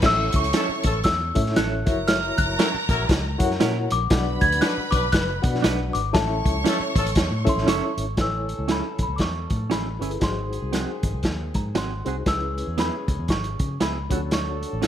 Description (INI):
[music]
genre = uptempo 1960s-style soul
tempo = 118 BPM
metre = 4/4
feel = swing 60% on 8ths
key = A major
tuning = A4 = 440 Hz
[part]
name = warm studio violin section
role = second line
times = 0.0-7.9 s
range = A#4 to C#6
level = -30 LUFS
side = equal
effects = none
[part]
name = reed electric piano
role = accompaniment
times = 0.0-14.9 s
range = C#4 to G#5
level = -29 LUFS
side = left 2 dB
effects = fast tremolo
[part]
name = vintage muted fingered electric bass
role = bass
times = 0.0-14.9 s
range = F#1 to C#3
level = -28 LUFS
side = equal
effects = none
[part]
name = vintage drum kit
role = drums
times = 0.0-14.9 s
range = crash cymbal, hi-hat, kick drum, snare drum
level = -24 LUFS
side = equal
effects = none
[part]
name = small celesta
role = melody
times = 0.1-14.9 s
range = A5 to G#6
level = -28 LUFS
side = left 1 dB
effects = none
[part]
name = mellow horn section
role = second line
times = 0.5-14.9 s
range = D#3 to B4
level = -34 LUFS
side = left 2 dB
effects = none
[part]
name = semi-hollow electric guitar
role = stabs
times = 0.5-14.9 s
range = B3 to B4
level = -30 LUFS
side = right 9 dB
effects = vibrato effect
[sound]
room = light reverb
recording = none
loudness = -20 LUFS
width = side -10 dB against mid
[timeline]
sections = 0.0-8.2 A section; 8.2-14.9 B section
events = none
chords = 0.0 A; 1.8 F#7; 4.1 Bm; 6.1 A; 8.2 Amaj7; 10.2 G#7; 12.3 C#m7; 14.1 Dmaj7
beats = | 0.03 0.54 1.05 1.56 | 2.07 2.58 3.09 3.60 | 4.11 4.62 5.12 5.63 | 6.14 6.65 7.16 7.67 | 8.18 8.69 9.20 9.71 | 10.22 10.73 11.24 11.76 | 12.27 12.78 13.29 13.80 | 14.31 14.82